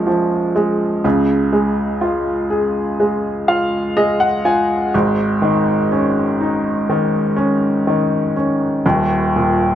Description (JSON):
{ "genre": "folk", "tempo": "62 BPM", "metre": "4/4", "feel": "straight", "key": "unclear", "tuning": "A4 = 440 Hz", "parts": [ { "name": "clear upright piano", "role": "solo", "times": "0.0-9.8 s", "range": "Eb1 to Ab5", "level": "-14 LUFS", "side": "equal", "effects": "none" } ], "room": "light reverb", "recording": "none", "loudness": "-15 LUFS", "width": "side -10 dB against mid", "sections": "0.0-9.8 A section", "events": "none", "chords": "0.0 Bbm7; 1.0 Db; 4.9 Absus4; 8.8 Eb5" }